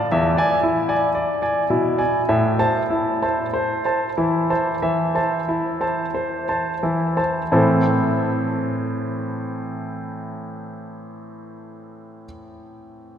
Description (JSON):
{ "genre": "classical, baroque-style suite movement for grand piano", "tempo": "43-59 BPM", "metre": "4/4", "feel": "rubato", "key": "A minor", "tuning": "A4 = 440 Hz", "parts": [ { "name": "bright grand piano", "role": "solo", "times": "0.0-13.2 s", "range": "E2 to A5", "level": "-19 LUFS", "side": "equal", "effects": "none" } ], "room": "wet cathedral reverb, RT60 4.8 s", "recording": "none", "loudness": "-18 LUFS", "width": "side -9 dB against mid", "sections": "0.0-7.5 A section; 7.5-12.9 B section", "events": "slowing down 0.0-7.5", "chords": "0.1 E7; 2.3 Am" }